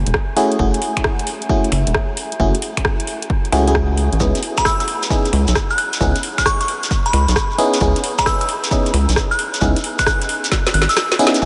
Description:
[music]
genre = UK garage, two-step garage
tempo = 133 BPM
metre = 4/4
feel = swing 67% on 16ths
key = unclear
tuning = A4 = 438 Hz
[part]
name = rubbery square bass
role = bass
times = 0.0-11.5 s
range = E1 to C#2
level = -19 LUFS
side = equal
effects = none
[part]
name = electronic kick drum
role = drums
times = 0.1-11.5 s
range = none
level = -23 LUFS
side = equal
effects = none
[part]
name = garage drum kit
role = drums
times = 0.1-11.4 s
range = finger snaps, hi-hat, rim click, snare drum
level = -25 LUFS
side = equal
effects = none
[part]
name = FM electric piano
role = stabs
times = 0.4-11.5 s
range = A3 to G#4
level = -23 LUFS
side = equal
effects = chorus, phaser, cassette tape, tape echo
[part]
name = shekere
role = percussion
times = 4.2-11.5 s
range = none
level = -29 LUFS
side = equal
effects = none
[part]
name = glassy synth bell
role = melody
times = 4.6-11.1 s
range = B5 to F#6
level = -23 LUFS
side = equal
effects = chorus, tape echo
[sound]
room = moderate huge ambient reverb, RT60 8.3 s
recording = dreamy mix soaked in reverb, nothing above 10.9 kHz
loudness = -17 LUFS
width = mono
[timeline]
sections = 0.0-11.4 A section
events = drum fill 10.5-11.4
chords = 0.0 F#m9; 4.2 C#m9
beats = 0.14 | 0.59 1.04 1.49 1.95 | 2.40 2.85 3.30 3.75 | 4.20 4.65 5.10 5.55 | 6.00 6.46 6.91 7.36 | 7.81 8.26 8.71 9.16 | 9.61 10.07 10.52 10.97 | 11.42

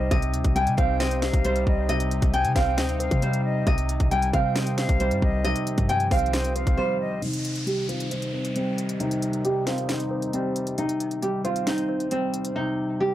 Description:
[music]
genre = hip hop, trap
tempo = 135 BPM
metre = 4/4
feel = half-time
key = C minor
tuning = A4 = 437 Hz
[part]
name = nylon-string guitar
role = melody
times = 0.0-13.1 s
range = C4 to G5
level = -27 LUFS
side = right 1 dB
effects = low-pass filter, analog delay
[part]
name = silver concert flute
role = second line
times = 0.0-7.2 s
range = Eb5 to Ab5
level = -34 LUFS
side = left 3 dB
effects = analog delay
[part]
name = dark grand piano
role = accompaniment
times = 0.0-13.1 s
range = C3 to C5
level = -28 LUFS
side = left 1 dB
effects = low-pass filter
[part]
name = sweeping resonant pad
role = sustained chords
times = 0.0-13.1 s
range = C3 to Eb4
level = -35 LUFS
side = right 1 dB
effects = chorus, low-pass filter
[part]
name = clean 808-style bass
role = bass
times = 0.0-6.8 s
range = C2 to C3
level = -26 LUFS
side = equal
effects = none
[part]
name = trap drum kit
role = drums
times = 0.1-12.5 s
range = hi-hat, kick drum, snare drum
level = -27 LUFS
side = equal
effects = none
[part]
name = downlifter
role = sound effects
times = 7.2-10.8 s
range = none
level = -38 LUFS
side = equal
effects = none
[sound]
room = little or no reverb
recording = dry, gritty hardware recording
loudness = -22 LUFS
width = side -13 dB against mid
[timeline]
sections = 0.0-7.2 A section; 7.2-13.1 B section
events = silent gap 6.8-7.2; filter sweep 7.2-13.1; drums muted 12.6-13.1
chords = 0.0 Cm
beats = | 0.11 0.56 1.00 1.45 | 1.89 2.33 2.78 3.22 | 3.67 4.11 4.56 5.00 | 5.45 5.89 6.33 6.78 | 7.22 7.67 8.11 8.56 | 9.00 9.45 9.89 10.34 | 10.78 11.22 11.67 12.11 | 12.56 13.00

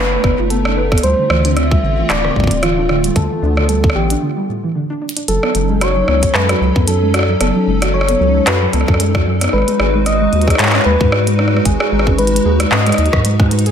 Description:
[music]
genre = IDM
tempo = 113 BPM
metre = 4/4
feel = swing 56% on 16ths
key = F# melodic minor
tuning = A4 = 440 Hz
[part]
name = soft struck synth lead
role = melody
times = 0.0-13.5 s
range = F4 to E5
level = -19 LUFS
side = left 1 dB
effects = chorus, digital delay
[part]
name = hollow soft pad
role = sustained chords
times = 0.0-13.7 s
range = D3 to B4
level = -20 LUFS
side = equal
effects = ensemble chorus, vintage 12-bit sampler grit
[part]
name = soft round pluck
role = arpeggios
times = 0.0-13.7 s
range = A2 to B4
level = -20 LUFS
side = right 1 dB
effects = lush chorus, digital delay
[part]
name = round analog bass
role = bass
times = 0.0-13.7 s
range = D1 to G#2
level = -17 LUFS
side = equal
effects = none
[part]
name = electronic kick drum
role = drums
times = 0.2-13.5 s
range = none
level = -16 LUFS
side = equal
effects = none
[part]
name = glitchy drum kit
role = drums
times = 0.2-13.7 s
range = handclaps, hi-hat, rim click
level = -18 LUFS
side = equal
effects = none
[sound]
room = light reverb, digital ambience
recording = none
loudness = -12 LUFS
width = side -8 dB against mid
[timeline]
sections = 0.0-5.3 A section; 5.3-13.7 B section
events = break 4.2-5.3; drum fill 5.0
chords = 0.0 B7; 1.0 Dm7; 5.3 F#m6; 9.5 G#m7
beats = 0.50 | 1.03 1.57 2.10 2.63 | 3.16 3.69 4.22 4.75 | 5.28 5.81 6.34 6.88 | 7.41 7.94 8.47 9.00 | 9.53 10.06 10.59 11.12 | 11.65 12.19 12.72 13.25

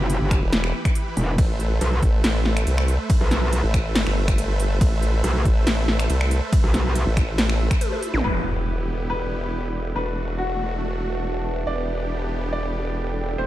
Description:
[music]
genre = heavy wobble dubstep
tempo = 140 BPM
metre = 4/4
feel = half-time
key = unclear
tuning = A4 = 440 Hz
[part]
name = supersaw chords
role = sustained chords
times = 0.0-13.5 s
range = E3 to B5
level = -30 LUFS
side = right 2 dB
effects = sidechain pumping
[part]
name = metallic wobble bass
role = bass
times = 0.0-7.0 s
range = E1 to B1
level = -20 LUFS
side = equal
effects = distortion, chorus, overdrive
[part]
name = big-room dance drum kit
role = drums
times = 0.1-8.2 s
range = finger snaps, hi-hat, ride cymbal, snare drum, toms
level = -26 LUFS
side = equal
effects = overdrive
[part]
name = electronic kick drum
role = drums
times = 0.3-7.8 s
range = none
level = -20 LUFS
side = equal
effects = overdrive
[part]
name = formant-sweep wobble bass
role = bass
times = 0.4-13.5 s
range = E1 to C2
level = -23 LUFS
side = equal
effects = chorus, overdrive
[part]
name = zap and impact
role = sound effects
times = 8.1-10.0 s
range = none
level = -30 LUFS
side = equal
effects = none
[part]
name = clear grand piano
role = melody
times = 8.2-13.5 s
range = F#4 to D5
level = -30 LUFS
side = left 2 dB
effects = tape echo
[part]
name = warbly tape-like pad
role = texture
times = 8.8-13.5 s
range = F#4 to B5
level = -33 LUFS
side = right 3 dB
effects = chorus, built-in reverb, sidechain pumping
[sound]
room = little or no reverb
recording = dark, warm production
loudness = -20 LUFS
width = side -14 dB against mid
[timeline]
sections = 0.0-8.2 A section; 8.2-13.5 B section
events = drop 0.0-8.2; drum fill 7.8-8.2; impact 8.2-10.0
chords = 0.0 Em; 1.4 Amadd9; 8.2 Em; 10.0 D/E; 11.7 G/E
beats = 0.10 0.53 0.95 | 1.38 1.81 2.24 2.67 | 3.10 3.53 3.95 4.38 | 4.81 5.24 5.67 6.10 | 6.53 6.95 7.38 7.81 | 8.24 8.67 9.10 9.53 | 9.95 10.38 10.81 11.24 | 11.67 12.10 12.53 12.95 | 13.38

